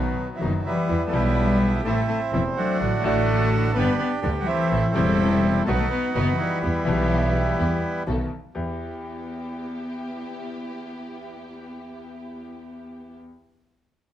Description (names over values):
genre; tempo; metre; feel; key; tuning
tango; 125 BPM; 4/4; rubato; E minor; A4 = 445 Hz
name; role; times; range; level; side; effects
bandoneon; melody; 0.0-8.0 s; D#3 to B4; -25 LUFS; right 3 dB; none
rich cello; second line; 0.0-8.0 s; B2 to B3; -26 LUFS; left 4 dB; none
bright concert grand piano; accompaniment; 0.0-13.3 s; E1 to G4; -30 LUFS; left 3 dB; none
dark studio string section; stabs; 0.0-13.1 s; F#3 to A4; -36 LUFS; right 1 dB; none
clear double bass; bass; 0.0-8.8 s; E1 to E2; -26 LUFS; right 2 dB; none
room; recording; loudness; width
light reverb; dark, warm production; -20 LUFS; side -11 dB against mid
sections
0.0-8.6 A section; 8.6-12.4 B section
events
none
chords
0.0 B; 0.9 Em; 1.8 Am; 2.8 D/A; 3.8 G; 4.7 Am; 5.7 B; 6.6 Em; 8.1 B7; 8.6 Em